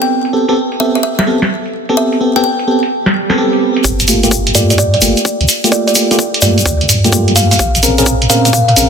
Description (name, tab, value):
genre	UK garage, two-step garage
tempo	128 BPM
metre	4/4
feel	swing 66% on 16ths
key	G dorian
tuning	A4 = 440 Hz
part	kalimba	melody	0.0-8.7 s	D5 to G5	-17 LUFS	left 1 dB	low-pass filter, digital delay
part	FM electric piano	stabs	0.0-8.9 s	A3 to Bb4	-14 LUFS	right 1 dB	chorus, low-pass filter, digital delay
part	punchy analog drum machine	drums	0.0-8.9 s	hi-hat, snare drum	-15 LUFS	right 2 dB	low-pass filter on hats, low-pass filter on snare, low-pass filter on room
part	swell	sound effects	3.0-3.8 s	none	-21 LUFS	right 3 dB	none
part	deep soft wobble bass	bass	3.8-8.9 s	G1 to Bb2	-14 LUFS	equal	chorus
part	electronic kick drum	drums	3.8-8.7 s	none	-15 LUFS	equal	overdrive, high-pass filter on kick
part	egg shaker	percussion	3.8-8.9 s	none	-17 LUFS	left 5 dB	none
room	moderate lush hall reverb, RT60 2.0 s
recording	dense, heavily limited modern master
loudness	-9 LUFS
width	side -6 dB against mid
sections	0.0-3.8 A section; 3.8-8.9 B section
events	swell 3.0-3.8; build-up 3.8-8.9; filter sweep on FM electric piano 3.8-8.9; filter sweep on kalimba 3.8-8.9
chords	0.0 Am9; 3.8 Gm9; 7.6 Bbm9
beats	| 0.10 0.56 1.03 1.50 | 1.97 2.44 2.91 3.38 | 3.85 4.32 4.78 5.25 | 5.72 6.19 6.66 7.13 | 7.60 8.06 8.53